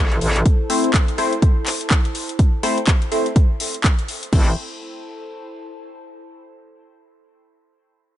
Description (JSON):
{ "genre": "bass house", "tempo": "124 BPM", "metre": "4/4", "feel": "swing 59% on 16ths", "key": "A minor", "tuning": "A4 = 440 Hz", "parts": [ { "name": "metallic wobble bass", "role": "bass", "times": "0.0-0.4, 4.3-4.6 s", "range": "A1", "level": "-19 LUFS", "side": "equal", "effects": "chorus, tube saturation, sidechain pumping" }, { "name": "warbly tape-like pad", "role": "texture", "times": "0.1-6.2 s", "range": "E4 to A5", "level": "-33 LUFS", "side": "equal", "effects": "chorus, built-in reverb, sidechain pumping" }, { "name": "house drum kit", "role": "drums", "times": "0.1-4.4 s", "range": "crash cymbal, handclaps, hi-hat, rim click", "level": "-24 LUFS", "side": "left 1 dB", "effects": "overdrive" }, { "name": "electronic kick drum", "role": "drums", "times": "0.5-4.4 s", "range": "none", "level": "-16 LUFS", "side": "equal", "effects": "overdrive" }, { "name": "band-passed chord stab", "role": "stabs", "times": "0.7-4.5 s", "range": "A3 to C5", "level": "-23 LUFS", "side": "left 2 dB", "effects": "phaser, sidechain pumping, dub echo" } ], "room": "little or no reverb", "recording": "nothing above 10.5 kHz", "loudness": "-16 LUFS", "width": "side -13 dB against mid", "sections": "0.0-4.3 A section; 4.3-6.3 B section", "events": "fade-out on ambient pad 0.0-4.3", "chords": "0.0 Am", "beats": "| 0.46 0.94 1.42 1.91 | 2.39 2.88 3.36 3.84 | 4.33 4.81 5.29 5.78" }